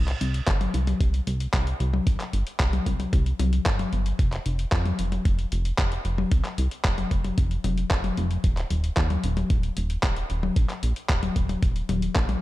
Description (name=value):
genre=italo disco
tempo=113 BPM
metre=4/4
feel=straight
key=unclear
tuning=A4 = 440 Hz
part: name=chorused synth bass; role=bass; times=0.0-12.4 s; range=Eb1 to F2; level=-26 LUFS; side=equal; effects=tube saturation
part: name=dusty soul sampler-style drum kit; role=drums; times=0.1-12.4 s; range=handclaps, hi-hat, toms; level=-29 LUFS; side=left 3 dB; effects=studio ambience
part: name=electronic kick drum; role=drums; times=0.5-12.3 s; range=none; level=-23 LUFS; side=equal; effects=studio ambience
room=digital ambience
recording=dark, warm production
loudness=-22 LUFS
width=side -16 dB against mid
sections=0.0-12.4 A section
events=none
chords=none